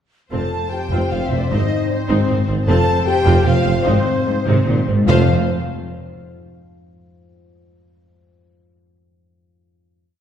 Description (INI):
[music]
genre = cinematic, heroic adventure film score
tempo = 152 BPM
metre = 3/4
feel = straight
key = unclear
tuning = A4 = 440 Hz
[part]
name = rich symphonic violin section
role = melody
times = 0.3-5.3 s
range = C5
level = -27 LUFS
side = left 4 dB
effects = none
[part]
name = large flute ensemble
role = second line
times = 0.3-5.3 s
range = C5 to A5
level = -27 LUFS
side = equal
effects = none
[part]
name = warm symphonic violin section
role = second line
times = 0.3-5.3 s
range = C5 to A5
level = -28 LUFS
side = left 2 dB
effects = none
[part]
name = rich symphonic viola section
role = accompaniment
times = 0.3-5.3 s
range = A3 to F4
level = -26 LUFS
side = right 1 dB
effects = none
[part]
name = dark French horn section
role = sustained chords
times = 0.3-5.2 s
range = C4 to A4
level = -23 LUFS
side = left 3 dB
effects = none
[part]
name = concert harp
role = arpeggios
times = 0.3-6.3 s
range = F2 to F5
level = -27 LUFS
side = left 4 dB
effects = none
[part]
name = dark symphonic double bass section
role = bass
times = 0.3-5.3 s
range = F1 to Ab1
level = -21 LUFS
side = right 2 dB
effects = none
[part]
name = rich symphonic cello section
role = bass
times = 0.3-5.3 s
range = F2 to C3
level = -21 LUFS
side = right 1 dB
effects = none
[part]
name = warm tuba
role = bass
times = 0.3-5.2 s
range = F1 to Ab1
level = -24 LUFS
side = right 2 dB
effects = none
[sound]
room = wet scoring stage reverb, RT60 1.9 s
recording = heard from further back in the room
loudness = -15 LUFS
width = side -9 dB against mid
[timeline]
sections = 0.3-5.1 theme; 5.1-6.3 final chord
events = none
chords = 0.3 F; 1.5 Ab; 2.7 F; 3.9 Ab; 5.1 F